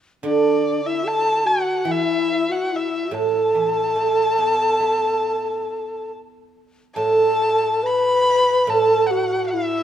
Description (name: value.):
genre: chinese traditional, Chinese chamber ensemble.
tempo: 66-74 BPM.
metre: 4/4.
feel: rubato.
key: A zhi mode.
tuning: A4 = 442 Hz.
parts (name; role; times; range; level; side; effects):
low xiao; second line; 0.2-9.8 s; D4 to B4; -21 LUFS; left 3 dB; none.
guzheng; accompaniment; 0.2-9.8 s; A2 to E4; -22 LUFS; right 7 dB; none.
dark erhu; melody; 0.3-9.8 s; D5 to B5; -21 LUFS; equal; none.
room: moderate concert hall reverb, RT60 1.9 s.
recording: close, detailed microphones.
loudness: -17 LUFS.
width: side -10 dB against mid.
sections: 0.0-7.0 A section; 7.0-9.8 B section.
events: none.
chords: none.